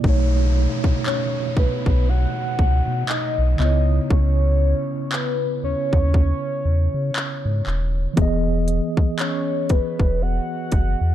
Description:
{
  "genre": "contemporary R&B",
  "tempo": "59 BPM",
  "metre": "4/4",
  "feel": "swing 58% on 16ths",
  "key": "unclear",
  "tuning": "A4 = 440 Hz",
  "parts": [
    { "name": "mellow tine electric piano", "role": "accompaniment", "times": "0.0-11.1 s", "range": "B2 to D#5", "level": "-25 LUFS", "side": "right 1 dB", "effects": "medium stereo tremolo" },
    { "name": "warm sub bass", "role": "bass", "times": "0.0-11.1 s", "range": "D#1 to C#3", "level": "-20 LUFS", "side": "equal", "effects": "none" },
    { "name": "trap drum kit", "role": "drums", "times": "0.0-11.0 s", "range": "handclaps, hi-hat, kick drum", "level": "-20 LUFS", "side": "equal", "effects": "none" },
    { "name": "downlifter", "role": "sound effects", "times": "0.0-8.2 s", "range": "none", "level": "-35 LUFS", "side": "right 1 dB", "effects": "none" },
    { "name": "soft octave-layered synth lead", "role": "melody", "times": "1.1-11.1 s", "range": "B4 to F#5", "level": "-26 LUFS", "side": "left 1 dB", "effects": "chorus, phaser, tape echo" }
  ],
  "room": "digital ambience",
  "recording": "dark, warm production",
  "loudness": "-18 LUFS",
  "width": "side -12 dB against mid",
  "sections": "0.0-11.1 A section",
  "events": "none",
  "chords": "0.0 B9; 3.6 C#m7; 8.2 Emaj7",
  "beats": "| 0.04 1.05 2.07 3.09 | 4.11 5.12 6.14 7.16 | 8.17 9.19 10.21"
}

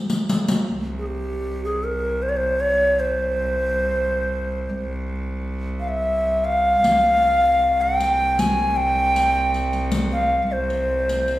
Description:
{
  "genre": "Arabic maqam ensemble",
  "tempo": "78 BPM",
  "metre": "4/4",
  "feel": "straight",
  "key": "C maqam hijaz",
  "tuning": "A4 = 440 Hz",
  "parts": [
    { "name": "riq", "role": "percussion", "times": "0.1-0.7, 6.8-11.4 s", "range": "none", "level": "-24 LUFS", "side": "left 1 dB", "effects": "none" },
    { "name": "clear cello", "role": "drone", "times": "0.7-11.4 s", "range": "C2", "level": "-26 LUFS", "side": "equal", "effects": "none" },
    { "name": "bright reedy low ney", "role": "melody", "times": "1.0-11.4 s", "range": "G4 to Ab5", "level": "-19 LUFS", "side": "equal", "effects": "none" }
  ],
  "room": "wet recital hall reverb, RT60 1.3 s",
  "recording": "heard from further back in the room",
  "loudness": "-19 LUFS",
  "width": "side -15 dB against mid",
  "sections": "0.7-11.4 A section",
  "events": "drum fill 0.0-0.7",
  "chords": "none",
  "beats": "| 0.68 1.45 2.22 2.99 | 3.76 4.53 5.30 6.07 | 6.84 7.61 8.38 9.15 | 9.93 10.70"
}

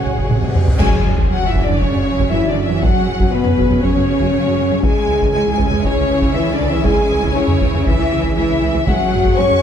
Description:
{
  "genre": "cinematic, epic orchestral film score",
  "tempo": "119 BPM",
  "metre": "4/4",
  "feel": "straight",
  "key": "unclear",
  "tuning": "A4 = 440 Hz",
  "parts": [
    { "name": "clear studio violin section", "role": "melody", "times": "0.0-9.6 s", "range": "B4 to C#6", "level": "-29 LUFS", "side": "left 5 dB", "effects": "none" },
    { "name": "clear symphonic violin section", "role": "second line", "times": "0.0-9.6 s", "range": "G#4 to C#6", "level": "-23 LUFS", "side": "left 4 dB", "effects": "none" },
    { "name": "warm symphonic viola section", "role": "accompaniment", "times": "0.0-9.6 s", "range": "E3 to C#5", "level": "-26 LUFS", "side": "right 1 dB", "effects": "none" },
    { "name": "mellow French horn section", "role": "sustained chords", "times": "0.0-9.6 s", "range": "F#3 to C#5", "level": "-19 LUFS", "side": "left 4 dB", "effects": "none" },
    { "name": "rich studio string section", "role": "sustained chords", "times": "0.0-9.6 s", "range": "C#4 to G#5", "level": "-27 LUFS", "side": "equal", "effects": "none" },
    { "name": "clear symphonic cello section", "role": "bass", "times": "0.0-9.6 s", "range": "B2 to C#4", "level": "-22 LUFS", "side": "right 5 dB", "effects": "none" },
    { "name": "rich symphonic double bass section", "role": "bass", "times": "0.0-9.6 s", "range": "A1 to F#2", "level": "-22 LUFS", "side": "right 4 dB", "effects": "none" },
    { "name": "taiko ensemble", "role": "drums", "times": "0.0-9.6 s", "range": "none", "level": "-19 LUFS", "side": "equal", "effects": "none" },
    { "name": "reverse cymbal and impact", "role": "sound effects", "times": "0.3-2.8 s", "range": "none", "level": "-31 LUFS", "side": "equal", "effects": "none" },
    { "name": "clash cymbals and concert bass drum", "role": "percussion", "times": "0.8-1.8 s", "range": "none", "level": "-24 LUFS", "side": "equal", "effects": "none" },
    { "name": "timpani", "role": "percussion", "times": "0.8-1.5 s", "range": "F#2", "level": "-26 LUFS", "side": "left 2 dB", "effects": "none" }
  ],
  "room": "moderate concert hall reverb, RT60 2.1 s",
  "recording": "dark, warm production",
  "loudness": "-13 LUFS",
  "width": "side -8 dB against mid",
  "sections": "0.8-9.6 A section",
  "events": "drum fill 0.3-0.8; reverse cymbal 0.3-0.8; band accent 0.8-1.3; impact 0.8-2.8",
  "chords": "0.0 F#madd9/A; 0.8 F#sus2; 4.8 C#m; 8.9 F#sus2",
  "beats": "0.29 | 0.80 1.30 1.81 2.31 | 2.82 3.32 3.83 4.33 | 4.83 5.34 5.84 6.35 | 6.85 7.35 7.86 8.36 | 8.87 9.37"
}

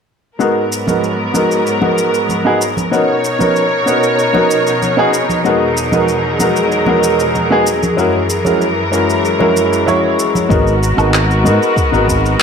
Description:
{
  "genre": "sunset chillout",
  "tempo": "95 BPM",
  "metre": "4/4",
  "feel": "straight",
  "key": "unclear",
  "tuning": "A4 = 441 Hz",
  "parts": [
    { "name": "clear grand piano", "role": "accompaniment", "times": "0.4-12.4 s", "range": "G#3 to C#5", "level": "-14 LUFS", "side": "moving between left 3 dB and right 3 dB", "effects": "auto-pan, low-pass filter, ping-pong delay" },
    { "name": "rich symphonic string section", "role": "sustained chords", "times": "0.4-12.4 s", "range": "E2 to C#5", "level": "-16 LUFS", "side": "equal", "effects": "none" },
    { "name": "electronic shaker, woodblock and handclaps", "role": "drums", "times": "0.4-12.4 s", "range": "none", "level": "-20 LUFS", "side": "equal", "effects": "none" },
    { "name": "congas", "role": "percussion", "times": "0.9-10.5 s", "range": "none", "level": "-23 LUFS", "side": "right 2 dB", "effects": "none" },
    { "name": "fretless electric bass", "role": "bass", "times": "10.5-12.3 s", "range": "G#1 to G#2", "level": "-14 LUFS", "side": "equal", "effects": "none" },
    { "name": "electronic kick drum", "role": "drums", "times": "10.5-12.2 s", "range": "none", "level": "-17 LUFS", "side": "equal", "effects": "none" }
  ],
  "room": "moderate digital room reverb, RT60 1.2 s, small room ambience",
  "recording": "none",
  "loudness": "-11 LUFS",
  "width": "side -6 dB against mid",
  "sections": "0.4-10.5 A section; 10.5-12.4 B section",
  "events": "none",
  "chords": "0.4 G#m9; 2.9 Bmaj9; 5.5 Emaj9#11; 8.0 F#9; 10.5 G#m9",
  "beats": "| 0.40 1.03 1.66 2.29 | 2.93 3.56 4.19 4.82 | 5.45 6.08 6.71 7.35 | 7.98 8.61 9.24 9.87 | 10.50 11.14 11.77 12.40"
}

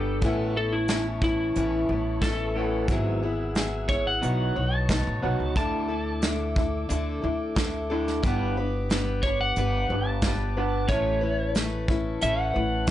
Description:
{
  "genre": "folk rock and heartland rock",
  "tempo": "90 BPM",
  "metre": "4/4",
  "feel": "straight",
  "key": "A major",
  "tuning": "A4 = 440 Hz",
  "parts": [
    { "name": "electric slide guitar", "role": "melody", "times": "0.0-12.9 s", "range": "E4 to A5", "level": "-28 LUFS", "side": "equal", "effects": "none" },
    { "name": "picked steel-string acoustic guitar", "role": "accompaniment", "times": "0.0-12.9 s", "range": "G#2 to C#5", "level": "-31 LUFS", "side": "left 3 dB", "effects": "none" },
    { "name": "mellow tonewheel organ", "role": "sustained chords", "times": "0.0-12.9 s", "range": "G4 to E6", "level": "-38 LUFS", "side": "right 1 dB", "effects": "slow rotary speaker" },
    { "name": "electric guitar through a small old amp", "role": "riff", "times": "0.0-12.9 s", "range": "G2 to F#4", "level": "-33 LUFS", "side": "right 1 dB", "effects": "none" },
    { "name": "upright bass", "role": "bass", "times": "0.0-12.9 s", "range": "G1 to D2", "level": "-29 LUFS", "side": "equal", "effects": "none" },
    { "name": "soft brush drum kit", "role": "drums", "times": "0.2-12.9 s", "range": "hi-hat, kick drum, snare drum", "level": "-27 LUFS", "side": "equal", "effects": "none" }
  ],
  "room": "light reverb",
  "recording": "nothing above 10.7 kHz",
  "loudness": "-23 LUFS",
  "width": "side -12 dB against mid",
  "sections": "0.0-12.9 A section",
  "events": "electric slide guitar solo 0.0-12.9",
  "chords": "0.2 Aadd9; 2.9 Eadd9/G#; 4.2 Badd9; 5.6 Dsus2; 8.2 G; 10.9 Aadd9",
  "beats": "| 0.24 0.90 1.57 2.23 | 2.90 3.57 4.24 4.90 | 5.57 6.24 6.90 7.57 | 8.24 8.90 9.57 10.23 | 10.90 11.56 12.23 12.89"
}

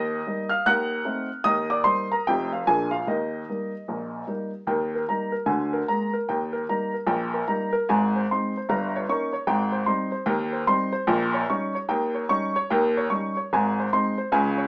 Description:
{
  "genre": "jazz, stride piano",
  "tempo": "150 BPM",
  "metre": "4/4",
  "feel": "swing 64% on 8ths",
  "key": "Eb major, Ab major from 11.1 s",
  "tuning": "A4 = 441 Hz",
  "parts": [
    { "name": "warm upright piano", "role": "solo", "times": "0.0-14.7 s", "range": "F1 to Gb6", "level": "-22 LUFS", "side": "equal", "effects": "none" }
  ],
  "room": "moderate studio reverb, RT60 0.5 s",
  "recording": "band playing live in one room, small speaker sound",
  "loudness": "-22 LUFS",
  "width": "side -26 dB against mid",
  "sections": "0.0-4.7 A section; 4.7-14.7 B section",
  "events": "none",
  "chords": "0.0 Eb; 0.7 Ebdim7; 1.5 Eb; 2.3 F7; 2.7 Bb7; 3.1 Eb; 5.5 Bb7/D; 6.3 Eb; 7.9 Ab; 8.7 Eb7/G; 9.5 Abmaj7; 11.1 Eb7/Bb; 12.7 Eb7; 13.5 Ab",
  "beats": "0.26 0.66 1.06 | 1.46 1.86 2.27 2.67 | 3.07 3.47 3.87 4.27 | 4.67 5.07 5.47 5.88 | 6.28 6.68 7.08 7.48 | 7.88 8.28 8.69 9.09 | 9.49 9.89 10.29 10.69 | 11.09 11.49 11.90 12.30 | 12.70 13.10 13.50 13.90 | 14.30"
}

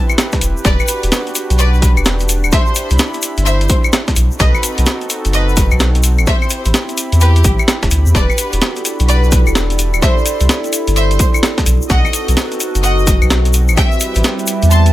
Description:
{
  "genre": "UK garage, two-step garage",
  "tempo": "128 BPM",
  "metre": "4/4",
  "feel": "swing 63% on 16ths",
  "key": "E minor",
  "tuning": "A4 = 440 Hz",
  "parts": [
    { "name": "warm analog pad", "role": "sustained chords", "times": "0.0-14.9 s", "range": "C4 to B5", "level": "-24 LUFS", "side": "right 1 dB", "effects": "chorus, sidechain pumping" },
    { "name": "breakbeat sampler-style drum kit", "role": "drums", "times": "0.1-14.9 s", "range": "claves, hi-hat, snare drum", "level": "-17 LUFS", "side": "equal", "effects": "small room ambience" },
    { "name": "egg shaker", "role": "percussion", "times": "0.1-14.9 s", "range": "none", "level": "-24 LUFS", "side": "left 4 dB", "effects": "none" },
    { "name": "electronic kick drum", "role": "drums", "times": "0.3-13.9 s", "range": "none", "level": "-15 LUFS", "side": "equal", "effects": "overdrive, small room ambience" },
    { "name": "saturated sub bass", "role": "bass", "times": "0.4-14.9 s", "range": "D1 to E2", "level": "-13 LUFS", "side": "equal", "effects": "none" },
    { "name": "clear studio violin section", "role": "melody", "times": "0.6-14.9 s", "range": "G4 to C6", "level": "-22 LUFS", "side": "equal", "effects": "tape echo" },
    { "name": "warbly tape-like pad", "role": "texture", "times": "8.1-14.9 s", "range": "G3 to E5", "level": "-21 LUFS", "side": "right 1 dB", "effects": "chorus, built-in reverb, sidechain pumping" }
  ],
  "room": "digital ambience",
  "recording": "none",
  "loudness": "-11 LUFS",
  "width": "side -15 dB against mid",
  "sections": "0.0-14.9 A section",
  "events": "none",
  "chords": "0.0 Am9 (rootless); 0.6 Em9; 2.5 Cmaj9; 4.2 B7b9; 6.3 Am9 (rootless); 8.1 Em9; 10.0 Cmaj9; 11.7 B7b9; 13.8 Am9 (rootless)",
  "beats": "0.18 | 0.65 1.12 1.59 2.06 | 2.52 2.99 3.46 3.93 | 4.40 4.87 5.34 5.80 | 6.27 6.74 7.21 7.68 | 8.15 8.62 9.09 9.55 | 10.02 10.49 10.96 11.43 | 11.90 12.37 12.84 13.30 | 13.77 14.24 14.71"
}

